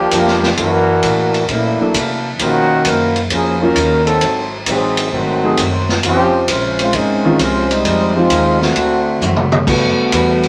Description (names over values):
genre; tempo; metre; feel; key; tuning
jazz, big band swing; 132 BPM; 4/4; swing 68% on 8ths; unclear; A4 = 440 Hz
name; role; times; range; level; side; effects
warm trombone section; second line; 0.0-9.5 s; C3 to A#4; -18 LUFS; equal; none
upright bass; bass; 0.0-10.5 s; F1 to C3; -25 LUFS; equal; none
picked acoustic archtop guitar; accompaniment; 0.1-10.5 s; Gb2 to B4; -24 LUFS; equal; none
warm concert grand piano; accompaniment; 0.1-10.4 s; Eb3 to A4; -19 LUFS; equal; none
swinging big-band drum kit; drums; 0.1-10.5 s; crash cymbal, hi-hat, kick drum, ride cymbal, snare drum, toms; -21 LUFS; equal; none
mellow trombone section; sustained chords; 9.7-10.5 s; D3 to F#4; -22 LUFS; equal; none
room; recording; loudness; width
wet studio reverb, RT60 0.6 s; none; -15 LUFS; mono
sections
0.0-9.7 A section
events
trombone section solo 0.0-9.7; drum fill 9.2-9.7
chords
0.0 Gm7; 0.6 Gb7alt; 2.4 Bmaj9#11; 4.2 Ab7b9; 6.0 Dbmaj7; 7.9 Fm9; 8.8 D7; 9.7 Gmaj7